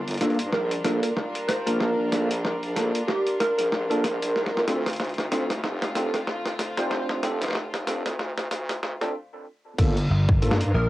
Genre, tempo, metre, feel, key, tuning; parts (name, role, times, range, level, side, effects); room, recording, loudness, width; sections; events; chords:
glitch hop; 94 BPM; 4/4; swing 58% on 16ths; G minor; A4 = 440 Hz
rich chamber string section; sustained chords; 0.0-10.9 s; D3 to Bb4; -33 LUFS; left 1 dB; sidechain pumping, cassette tape
wobble bass; bass; 0.0-10.7 s; F1 to G2; -30 LUFS; equal; chorus, high-pass filter
boom bap sampler-style drum kit; drums; 0.1-10.7 s; crash cymbal, hi-hat, rim click, snare drum; -29 LUFS; equal; cassette tape
bell-like tine electric piano; stabs; 0.2-10.6 s; Bb3 to C5; -28 LUFS; equal; analog chorus, sidechain pumping, cassette tape, analog delay
plucky unison lead; melody; 0.5-4.7, 10.7-10.9 s; G4 to C5; -26 LUFS; right 1 dB; phaser
electronic kick drum; drums; 9.8-10.4 s; -21 LUFS; equal; cassette tape
vintage slap bass; bass; 10.1-10.9 s; G1 to Bb1; -21 LUFS; equal
wet booth ambience, RT60 0.2 s; home recording on cassette, high-pass filter; -23 LUFS; side -16 dB against mid
0.0-9.8 A section; 9.8-10.9 B section
build-up 0.0-9.8; drum fill 0.0-9.1; filter sweep on tine electric piano 0.0-9.8; break 9.1-9.8; drop 9.8-10.9
0.0 Gm7; 4.7 Dm7; 9.8 Gm7